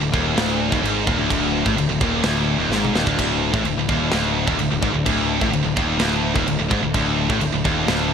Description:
heavy metal; 128 BPM; 4/4; straight; A4 = 438 Hz
heavy high-gain guitar; riff; 0.0-8.1 s; D2 to A2; -23 LUFS; left 9 dB; distortion
heavy high-gain guitar; riff; 0.0-8.1 s; D2 to A2; -23 LUFS; right 11 dB; distortion
thick fuzz guitar; riff; 0.0-8.1 s; D2 to A2; -25 LUFS; equal; distortion
fuzz picked electric bass; bass; 0.0-8.1 s; D1 to A1; -26 LUFS; right 1 dB; overdrive
tight metal drum kit; drums; 0.1-8.0 s; crash cymbal, kick drum, snare drum, splash cymbal, toms; -24 LUFS; right 1 dB
moderate plate reverb, RT60 2.0 s, small room ambience; bright 1980s-style digital production; -17 LUFS; side -7 dB against mid
0.0-8.1 A section
drum fill 2.7-3.2
0.0 D5
0.36 0.83 | 1.30 1.77 2.24 2.71 | 3.18 3.65 4.12 4.59 | 5.06 5.53 6.00 6.47 | 6.94 7.41 7.88

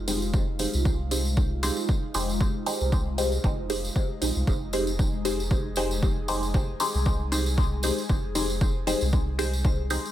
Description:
dub techno; 116 BPM; 4/4; swing 56% on 16ths; F minor; A4 = 438 Hz
airy breathy pad; sustained chords; 0.0-10.1 s; Ab3 to Ab4; -35 LUFS; left 2 dB; chorus, phaser, sidechain pumping
soft dub sub bass; bass; 0.0-10.0 s; F1 to C2; -29 LUFS; equal; sidechain pumping
filtered dub chord stab; stabs; 0.1-10.1 s; Eb4 to C5; -30 LUFS; left 1 dB; phaser, dub echo
electronic hi-hat; drums; 0.1-10.0 s; -37 LUFS; equal
tambourine; percussion; 0.1-10.1 s; -35 LUFS; right 2 dB
electronic kick drum; drums; 0.3-9.8 s; -25 LUFS; equal
light reverb; -23 LUFS; side -12 dB against mid
0.0-10.1 A section
0.0 Fm7
| 0.34 0.85 1.37 1.89 | 2.41 2.92 3.44 3.96 | 4.47 4.99 5.51 6.03 | 6.54 7.06 7.58 8.10 | 8.61 9.13 9.65

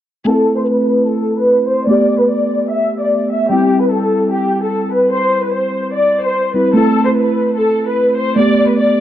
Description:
hip hop; 148 BPM; 4/4; half-time; A minor; A4 = 440 Hz
muted felt-like synth keys; accompaniment; 0.2-9.0 s; G3 to G4; -16 LUFS; right 1 dB; chorus, low-pass filter
warm studio violin section; melody; 0.3-9.0 s; G4 to E5; -14 LUFS; left 1 dB; low-pass filter
light reverb, studio reverb; dark, warm production; -12 LUFS; side -11 dB against mid
0.3-9.0 A section
filter sweep 0.3-9.0
0.3 Am; 1.9 Gadd9; 3.5 C; 6.8 Am; 8.4 Gadd9
| 0.27 0.67 1.08 1.48 | 1.89 2.29 2.70 3.11 | 3.51 3.92 4.32 4.73 | 5.13 5.54 5.94 6.35 | 6.75 7.16 7.57 7.97 | 8.38 8.78

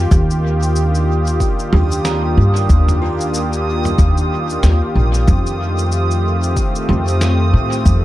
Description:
ambient dub; 93 BPM; 4/4; swing 59% on 16ths; A4 = 441 Hz
warm analog pad; sustained chords; 0.0-8.0 s; Eb3 to G4; -20 LUFS; left 1 dB; chorus
upright bass; bass; 0.0-8.0 s; Bb1 to A2; -14 LUFS; equal
electronic kick drum; drums; 0.1-8.0 s; -18 LUFS; equal; overdrive, small room ambience
lo-fi sampler-style drum kit; drums; 0.1-8.0 s; cabasa, snare drum, toms; -26 LUFS; equal; small room ambience, dub echo
backwards swelling texture; texture; 0.6-8.0 s; Eb6; -27 LUFS; right 5 dB; built-in reverb
buzzing kalimba; arpeggios; 1.7-5.7 s; F4 to Bb5; -28 LUFS; right 2 dB; vintage 12-bit sampler grit, dub echo
digital ambience; echo-heavy mix; -13 LUFS; side -15 dB against mid
0.0-8.0 A section
0.1 Ebmaj9; 5.3 F9
| 0.11 0.76 1.40 2.05 | 2.69 3.34 3.98 4.63 | 5.28 5.92 6.57 7.21 | 7.86

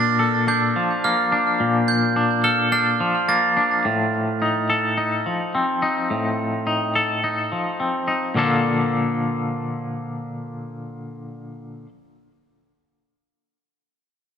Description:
rock; 106 BPM; 4/4; straight; Bb major; A4 = 442 Hz
glockenspiel with brass mallets; arpeggios; 0.0-3.8 s; F6 to A6; -24 LUFS; right 7 dB; tape echo
twangy electric guitar; arpeggios; 0.0-11.9 s; A2 to A4; -20 LUFS; left 2 dB; tremolo, tape echo
wet large studio reverb, RT60 1.3 s; -19 LUFS; side -7 dB against mid
0.0-8.4 A section; 8.4-10.6 B section
0.0 Bbmaj7; 3.8 F7/A; 8.4 Bbmaj7
0.48 1.04 | 1.60 2.16 2.72 3.29 | 3.85 4.41 4.98 5.54 | 6.11 6.67 7.24 7.80 | 8.37 8.93 9.50 10.07

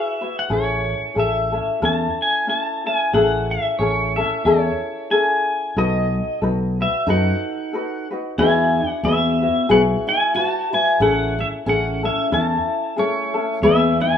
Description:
Hawaiian; 92 BPM; 4/4; swing 57% on 8ths; A major; A4 = 444 Hz
pedal steel guitar; melody; 0.0-14.2 s; C#5 to A5; -21 LUFS; equal; plate reverb, tape echo
ukulele; accompaniment; 0.0-14.2 s; C#4 to B4; -21 LUFS; left 3 dB; plate reverb
fretless electric bass; bass; 0.5-14.2 s; A1 to F#2; -22 LUFS; equal
fingerpicked steel-string acoustic guitar; second line; 7.1-14.2 s; A3 to F#4; -25 LUFS; right 2 dB; plate reverb, tape echo
moderate studio reverb, RT60 0.5 s; rough home demo mix; -17 LUFS; side -8 dB against mid
0.0-3.1 A section; 3.1-13.6 A section
0.0 Eadd9; 0.5 Amaj7; 5.8 B7; 8.4 Eadd9; 11.0 Amaj7; 13.6 E
| 0.51 1.16 1.82 2.48 | 3.14 3.79 4.45 5.11 | 5.76 6.42 7.07 7.73 | 8.38 9.04 9.70 10.35 | 11.01 11.66 12.32 12.97 | 13.63

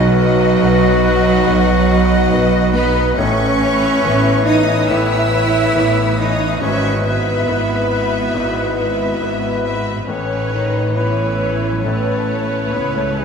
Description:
cinematic; 70 BPM; 4/4; rubato; A lydian; A4 = 440 Hz
rich symphonic violin section; melody; 0.0-13.2 s; C#5 to E5; -25 LUFS; left 3 dB
clear clarinet; second line; 0.0-13.2 s; D#4 to E5; -23 LUFS; left 3 dB
clear symphonic violin section; second line; 0.0-13.2 s; D#5 to E6; -26 LUFS; left 1 dB
mellow cor anglais; second line; 0.0-13.2 s; B4; -26 LUFS; left 4 dB
mellow hollow flute section; second line; 0.0-13.2 s; C#5 to E5; -25 LUFS; right 1 dB
bright grand piano; accompaniment; 0.0-13.2 s; G#1 to C#5; -23 LUFS; left 4 dB
rich symphonic viola section; accompaniment; 0.0-13.2 s; E3 to B4; -27 LUFS; left 1 dB
mellow French horn section; sustained chords; 0.0-13.2 s; E3 to B4; -24 LUFS; left 5 dB
clear symphonic cello section; bass; 0.0-13.2 s; D#3 to E4; -19 LUFS; right 5 dB
rich symphonic double bass section; bass; 0.0-13.2 s; G#1 to C#2; -21 LUFS; right 2 dB
moderate scoring stage reverb, RT60 1.7 s; -13 LUFS; side -6 dB against mid
0.0-13.2 A section
0.0 B; 3.2 Aadd9; 6.6 Eadd9/G#; 10.1 Aadd9
0.62 1.47 2.32 | 3.17 4.03 4.89 5.75 | 6.62 7.48 8.35 9.21 | 10.08 10.95 11.84 12.73

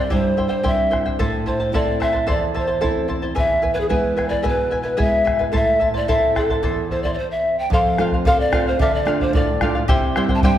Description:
andean folk, Andean ensemble; 110 BPM; 2/4; straight; A minor; A4 = 441 Hz
breathy mellow pan flute; melody; 0.0-10.6 s; G#4 to A5; -20 LUFS; equal
charango; accompaniment; 0.0-10.6 s; E4 to A5; -24 LUFS; left 2 dB
nylon-string guitar; accompaniment; 0.0-10.6 s; E2 to F4; -24 LUFS; right 2 dB
bombo; percussion; 0.1-10.6 s; -23 LUFS; equal
moderate concert hall reverb, RT60 2.0 s; recorded in a church or concert hall; -17 LUFS; side -11 dB against mid
0.0-7.7 A section; 7.7-10.6 B section
0.0 C; 1.2 Am; 3.4 E; 5.5 Am; 7.7 F; 8.8 Dm; 9.9 C
| 0.11 0.66 | 1.20 1.74 | 2.28 2.83 | 3.37 3.92 | 4.46 5.00 | 5.54 6.09 | 6.63 7.17 | 7.72 8.26 | 8.80 9.34 | 9.88 10.43

